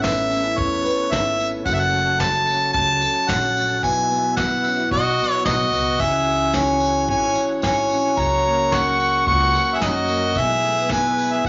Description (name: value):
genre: acoustic folk duo or small band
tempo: 110 BPM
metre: 4/4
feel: straight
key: unclear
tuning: A4 = 440 Hz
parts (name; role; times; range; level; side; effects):
- clear harmonica; melody; 0.0-11.5 s; C#5 to C#6; -22 LUFS; equal; none
- fingerpicked steel-string acoustic guitar; accompaniment; 0.0-11.5 s; F#2 to B4; -30 LUFS; equal; none
- tonewheel organ; sustained chords; 0.0-11.5 s; E3 to A4; -32 LUFS; equal; chorus vibrato, slow rotary speaker
- upright bass; bass; 0.0-11.5 s; F#1 to F#2; -31 LUFS; equal; none
- soft brush drum kit; drums; 0.0-11.5 s; kick drum, snare drum; -30 LUFS; equal; none
- tambourine; percussion; 0.0-11.3 s; none; -39 LUFS; equal; none
- warm fiddle; second line; 4.9-11.5 s; F#4 to F#5; -26 LUFS; equal; none
room: moderate large studio reverb, RT60 0.8 s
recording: nothing above 7.5 kHz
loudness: -20 LUFS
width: mono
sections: 0.0-11.5 A section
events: none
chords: 0.0 Aadd9; 1.7 F#m; 3.8 Bsus4; 4.9 B; 6.0 C#m; 8.2 F#/C#; 10.4 E/B